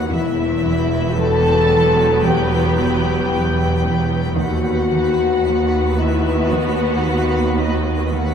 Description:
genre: cinematic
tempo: 56 BPM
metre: 4/4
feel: straight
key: E harmonic minor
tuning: A4 = 440 Hz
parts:
  - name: muted studio violin section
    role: melody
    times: 0.0-8.3 s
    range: B4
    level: -30 LUFS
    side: left 4 dB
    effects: none
  - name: muted studio violin section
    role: second line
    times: 0.0-8.3 s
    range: D#5 to A5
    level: -26 LUFS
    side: left 2 dB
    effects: none
  - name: muted studio viola section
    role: accompaniment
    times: 0.0-8.3 s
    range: F#3 to F#4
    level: -25 LUFS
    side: equal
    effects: none
  - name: twinkling granular texture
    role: sustained chords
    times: 0.0-8.3 s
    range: B4 to B5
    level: -31 LUFS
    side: equal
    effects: built-in reverb
  - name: warm French horn section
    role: sustained chords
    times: 0.0-8.3 s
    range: D#4 to A4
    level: -20 LUFS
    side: left 4 dB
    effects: none
  - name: muted studio cello section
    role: bass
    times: 0.0-8.3 s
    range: D#2 to E2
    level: -22 LUFS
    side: right 2 dB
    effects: none
  - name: muted studio double bass section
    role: bass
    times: 0.0-8.3 s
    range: E1 to D#2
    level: -22 LUFS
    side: right 4 dB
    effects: none
  - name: bowed-like drone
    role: drone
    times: 0.0-8.3 s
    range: D#2 to E2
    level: -28 LUFS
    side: right 1 dB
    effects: none
  - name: muted studio cello section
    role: riff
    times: 0.1-8.3 s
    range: E2 to D#4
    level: -28 LUFS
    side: right 2 dB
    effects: none
room: moderate scoring stage reverb, RT60 1.5 s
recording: dark, warm production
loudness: -15 LUFS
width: side -7 dB against mid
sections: 0.0-8.3 A section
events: none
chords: 0.1 Emadd9; 4.4 B/D#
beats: | 0.09 1.16 2.23 3.31 | 4.38 5.45 6.52 7.59

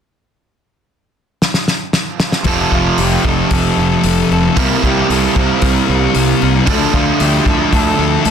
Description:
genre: rock, shoegaze and dream pop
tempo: 114 BPM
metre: 4/4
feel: straight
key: F major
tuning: A4 = 439 Hz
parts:
  - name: loose indie drum kit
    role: drums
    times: 1.4-8.3 s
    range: hi-hat, kick drum, snare drum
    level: -18 LUFS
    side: equal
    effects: none
  - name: thick fuzz guitar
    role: riff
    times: 2.4-8.3 s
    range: F2 to D4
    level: -16 LUFS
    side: left 10 dB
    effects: distortion, lush chorus
  - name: fingerpicked twelve-string acoustic guitar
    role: arpeggios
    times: 2.5-8.3 s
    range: F4 to Bb4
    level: -22 LUFS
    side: left 5 dB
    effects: wide subtle chorus, analog delay
  - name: overdriven semi-hollow guitar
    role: riff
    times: 2.5-8.3 s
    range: F2 to F4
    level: -16 LUFS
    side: right 10 dB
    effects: reverse reverb
  - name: fuzz fingered electric bass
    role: bass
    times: 2.5-8.3 s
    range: F1 to D2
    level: -18 LUFS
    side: equal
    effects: overdrive
room: small room ambience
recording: dense, heavily limited modern master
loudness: -11 LUFS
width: side -8 dB against mid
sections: 0.3-2.5 A section; 2.5-8.3 B section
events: drum fill 1.4-2.5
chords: 0.3 N.C.; 2.5 Fadd9; 4.6 C7; 6.7 Dm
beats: | 0.34 0.87 1.40 1.93 | 2.46 2.98 3.51 4.04 | 4.57 5.09 5.62 6.15 | 6.67 7.20 7.73 8.26

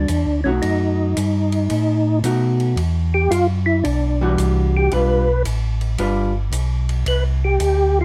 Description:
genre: soul jazz organ trio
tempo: 112 BPM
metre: 4/4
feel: swing 68% on 8ths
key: G major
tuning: A4 = 441 Hz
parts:
  - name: percussive tonewheel organ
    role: melody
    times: 0.0-8.0 s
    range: C#4 to B4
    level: -22 LUFS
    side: equal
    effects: slow rotary speaker, chorus vibrato
  - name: vintage hollow-body jazz guitar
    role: accompaniment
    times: 0.0-6.3 s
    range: E3 to B4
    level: -24 LUFS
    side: equal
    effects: none
  - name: mellow tonewheel organ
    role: bass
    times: 0.0-8.0 s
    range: G1 to B2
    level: -21 LUFS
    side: equal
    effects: slow rotary speaker
  - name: compact cocktail drum kit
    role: drums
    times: 0.1-7.8 s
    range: hi-hat, ride cymbal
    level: -36 LUFS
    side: equal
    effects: none
room: little or no reverb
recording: close, detailed microphones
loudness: -19 LUFS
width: mono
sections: 0.0-8.0 A section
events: none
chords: 0.0 Gmaj9 (rootless); 0.6 B7; 2.8 Em9; 4.9 G7; 7.1 Cmaj7sus2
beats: 0.08 | 0.62 1.16 1.70 2.23 | 2.77 3.31 3.84 4.38 | 4.92 5.46 5.99 6.53 | 7.07 7.60

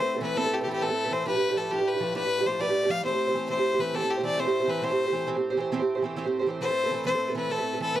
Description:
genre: celtic folk, Celtic slide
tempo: 134 BPM (dotted quarters)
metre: 12/8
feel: straight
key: unclear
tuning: A4 = 439 Hz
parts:
  - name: clear fiddle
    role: melody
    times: 0.0-8.0 s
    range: G4 to F5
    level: -27 LUFS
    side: left 3 dB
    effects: none
  - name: Irish bouzouki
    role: accompaniment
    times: 0.0-8.0 s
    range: E3 to C5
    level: -27 LUFS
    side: right 4 dB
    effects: none
  - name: accordion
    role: drone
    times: 0.0-8.0 s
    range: A2 to A3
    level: -38 LUFS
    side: left 4 dB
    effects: light tremolo tuning
room: light reverb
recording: dry, close 1970s-style studio recording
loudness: -24 LUFS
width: side -12 dB against mid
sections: 0.0-8.0 A section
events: none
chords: 0.0 Amadd9; 1.3 G7; 3.1 C; 6.6 Amadd9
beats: 0.37 0.82 | 1.27 1.71 2.16 2.60 | 3.05 3.50 3.94 4.39 | 4.83 5.28 5.72 6.17 | 6.62 7.06 7.51 7.96

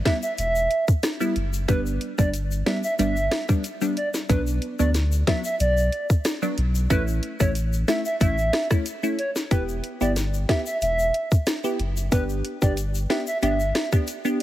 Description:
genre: dancehall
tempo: 92 BPM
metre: 4/4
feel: straight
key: E dorian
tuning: A4 = 440 Hz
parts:
  - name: hollow clarinet-like synth lead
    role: melody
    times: 0.1-14.4 s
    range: B4 to E5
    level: -27 LUFS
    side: right 1 dB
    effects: chorus, ping-pong delay
  - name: wavetable chord stab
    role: accompaniment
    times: 0.1-14.4 s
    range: F#3 to G4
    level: -27 LUFS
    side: equal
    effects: none
  - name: island pop drum kit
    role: drums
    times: 0.1-14.4 s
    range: hi-hat, kick drum, rim click, snare drum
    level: -23 LUFS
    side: equal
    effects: none
  - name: tube shaker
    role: percussion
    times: 0.2-14.4 s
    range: none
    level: -38 LUFS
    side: left 6 dB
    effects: none
  - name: warm sub bass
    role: bass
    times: 0.4-13.7 s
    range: E1 to D2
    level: -25 LUFS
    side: equal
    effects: none
room: little or no reverb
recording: heavily compressed radio sound, multiband compression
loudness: -21 LUFS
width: side -14 dB against mid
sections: 0.0-14.4 A section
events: none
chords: 0.0 Em; 1.7 G; 4.3 Bm; 6.9 A; 9.5 Em; 12.1 G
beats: 0.38 1.03 | 1.69 2.34 2.99 3.64 | 4.29 4.95 5.60 6.25 | 6.90 7.56 8.21 8.86 | 9.51 10.16 10.82 11.47 | 12.12 12.77 13.43 14.08

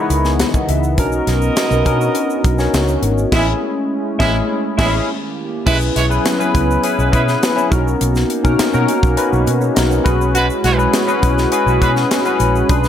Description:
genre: polished 1980s jazz-funk pop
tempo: 102 BPM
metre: 4/4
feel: straight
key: B major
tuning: A4 = 441 Hz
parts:
  - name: clear horn section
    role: second line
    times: 0.0-11.9 s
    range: G#3 to D#5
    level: -22 LUFS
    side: right 4 dB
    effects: none
  - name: barky tine electric piano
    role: accompaniment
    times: 0.0-12.9 s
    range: B3 to B5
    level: -17 LUFS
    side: left 2 dB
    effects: overdrive, analog chorus
  - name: hollow soft pad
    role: sustained chords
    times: 0.0-12.9 s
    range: C#3 to D#5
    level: -23 LUFS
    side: right 1 dB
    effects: chorus
  - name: vintage muted fingered electric bass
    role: bass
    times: 0.1-12.9 s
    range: G#1 to B2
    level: -18 LUFS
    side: equal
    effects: none
  - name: tight funk drum kit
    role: drums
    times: 0.1-12.9 s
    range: crash cymbal, hi-hat, kick drum, snare drum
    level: -19 LUFS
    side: equal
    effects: gated reverb
  - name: tube shaker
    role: percussion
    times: 0.1-12.9 s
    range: none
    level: -35 LUFS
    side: right 10 dB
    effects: none
room: light reverb, small room ambience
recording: none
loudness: -13 LUFS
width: side -9 dB against mid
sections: 0.0-5.7 A section; 5.7-12.9 B section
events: tine electric piano fill 0.0-1.0; band accent 3.3-5.7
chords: 0.0 C#m7; 1.0 Bmaj7; 3.3 Amaj7; 5.1 D#7b9; 5.7 F#9sus4/B; 7.7 Bmaj7; 10.1 E69/B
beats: 0.39 | 0.98 1.57 2.15 2.74 | 3.32 3.91 4.50 5.08 | 5.67 6.25 6.84 7.42 | 8.01 8.59 9.18 9.77 | 10.35 10.94 11.52 12.11 | 12.70

